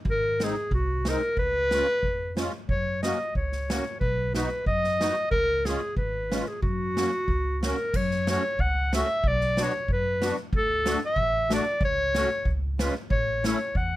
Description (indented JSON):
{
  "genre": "alpine folk, alpine dance band",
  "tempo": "92 BPM",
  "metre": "2/4",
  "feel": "straight",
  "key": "F# major, F# minor from 7.9 s",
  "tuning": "A4 = 440 Hz",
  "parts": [
    { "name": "upright bass", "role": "bass", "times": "0.0-14.0 s", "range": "G#1 to F#2", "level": "-30 LUFS", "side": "equal", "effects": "none" },
    { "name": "warm clarinet", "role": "melody", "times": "0.1-14.0 s", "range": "F#4 to F#5", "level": "-26 LUFS", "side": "equal", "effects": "none" },
    { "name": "street-band drum kit", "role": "drums", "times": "0.1-13.9 s", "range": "crash cymbal, hi-hat, kick drum, snare drum", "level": "-31 LUFS", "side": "equal", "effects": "none" },
    { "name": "musette accordion", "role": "accompaniment", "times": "0.4-13.6 s", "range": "G#3 to F#4", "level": "-30 LUFS", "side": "left 1 dB", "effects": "none" }
  ],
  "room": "light reverb",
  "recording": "close, detailed microphones",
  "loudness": "-24 LUFS",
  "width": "side -15 dB against mid",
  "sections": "0.0-7.9 A section; 7.9-14.0 B section",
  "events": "none",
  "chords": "0.1 G#; 1.4 C#; 2.7 F#; 4.0 B; 5.3 C#; 6.6 F#; 7.9 F#m; 9.2 Bm; 10.5 D; 11.8 F#m/C#; 12.5 C#; 13.1 A"
}